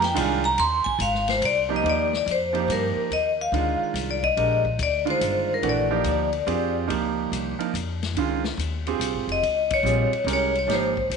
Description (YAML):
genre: modal jazz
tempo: 143 BPM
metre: 3/4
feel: swing 66% on 8ths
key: unclear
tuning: A4 = 440 Hz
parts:
  - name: vibraphone with medium hard mallets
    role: melody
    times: 0.0-6.7, 9.3-11.2 s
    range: Bb4 to C6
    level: -23 LUFS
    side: left 3 dB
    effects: tape echo
  - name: upright bass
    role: bass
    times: 0.0-11.2 s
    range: F1 to G2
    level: -29 LUFS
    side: left 2 dB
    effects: none
  - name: vintage drum kit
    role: drums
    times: 0.0-11.2 s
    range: hi-hat, kick drum, ride cymbal, snare drum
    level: -34 LUFS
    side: left 9 dB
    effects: none
  - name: clear concert grand piano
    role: accompaniment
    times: 0.1-10.9 s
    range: Eb3 to Bb4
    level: -27 LUFS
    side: right 11 dB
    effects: none
room: moderate echo chamber reverb, RT60 1.7 s, small room ambience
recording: 1960s-style stereo with parts hard left and right, nothing above 10.8 kHz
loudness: -21 LUFS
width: side -5 dB against mid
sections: 0.0-1.8 A section; 1.8-11.2 B section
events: vibraphone solo 0.0-1.8; band accent 9.6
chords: 0.0 Bb9sus4 (rootless); 1.8 Ebmaj9; 6.9 Dbmaj9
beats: 0.17 | 0.59 1.01 1.43 | 1.84 2.27 2.69 | 3.10 3.53 3.95 | 4.37 4.79 5.21 | 5.63 6.05 6.47 | 6.89 7.31 7.73 | 8.16 8.58 9.00 | 9.42 9.84 10.26 | 10.68 11.10